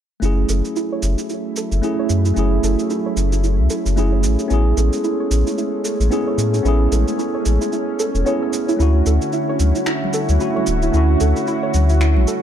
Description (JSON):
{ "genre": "sunset chillout", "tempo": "112 BPM", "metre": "4/4", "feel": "swing 58% on 16ths", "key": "F# minor", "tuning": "A4 = 441 Hz", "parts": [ { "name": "tine electric piano", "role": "accompaniment", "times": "0.2-12.4 s", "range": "A3 to G#4", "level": "-22 LUFS", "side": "right 2 dB", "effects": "auto-pan, digital delay" }, { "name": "lush unison pad", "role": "sustained chords", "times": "0.2-12.4 s", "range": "D3 to F#4", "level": "-24 LUFS", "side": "equal", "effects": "chorus" }, { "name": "soft round pluck", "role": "arpeggios", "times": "0.2-12.4 s", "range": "E4 to C#5", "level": "-26 LUFS", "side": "right 4 dB", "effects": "chorus, digital delay" }, { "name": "warm sub bass", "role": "bass", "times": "0.2-12.3 s", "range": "D1 to A2", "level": "-16 LUFS", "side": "equal", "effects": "none" }, { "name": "electronic cabasa and finger snaps", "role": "drums", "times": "0.2-12.4 s", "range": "none", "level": "-29 LUFS", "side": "right 2 dB", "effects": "none" }, { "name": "congas", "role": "percussion", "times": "9.6-12.3 s", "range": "none", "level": "-29 LUFS", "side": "left 7 dB", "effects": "none" } ], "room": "light reverb", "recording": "dark, warm production", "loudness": "-16 LUFS", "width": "side -10 dB against mid", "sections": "0.2-12.4 A section", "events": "filter sweep on analog synth pad 0.2-12.4; filter sweep on synth pluck 0.2-12.4", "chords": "0.2 F#m7; 4.5 Amaj7; 8.8 Dmaj9" }